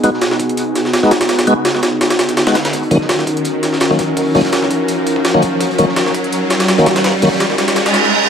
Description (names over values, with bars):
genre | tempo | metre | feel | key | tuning
drum and bass, jungle | 167 BPM | 4/4 | swing 54% on 16ths | unclear | A4 = 440 Hz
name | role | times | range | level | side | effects
airy breathy pad | sustained chords | 0.0-8.1 s | B3 to A#4 | -18 LUFS | equal | chorus, vintage 12-bit sampler grit
tonewheel organ | stabs | 0.0-7.3 s | D#3 to F#4 | -17 LUFS | left 1 dB | overdrive, chorus vibrato, slow rotary speaker, low-pass filter, dub echo
crunchy breakbeat drum kit | drums | 0.0-8.0 s | hi-hat, snare drum | -28 LUFS | right 1 dB | none
jungle sampler-style drum kit | drums | 0.0-8.1 s | hi-hat, kick drum, snare drum | -17 LUFS | equal | overdrive, high-pass filter on snare, high-pass filter on hats, high-pass filter on kick
riser and reverse cymbal | sound effects | 0.0-8.3 s | none | -19 LUFS | right 1 dB | none
room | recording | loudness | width
moderate echo chamber reverb, RT60 1.4 s, small room ambience | vinyl crackle | -12 LUFS | side -7 dB against mid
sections
0.0-8.3 A section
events
build-up 0.0-8.3; riser 0.0-8.1; filter sweep on analog synth pad 0.0-8.3; reverse cymbal 7.8-8.3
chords
0.0 G#m7; 2.7 D#m7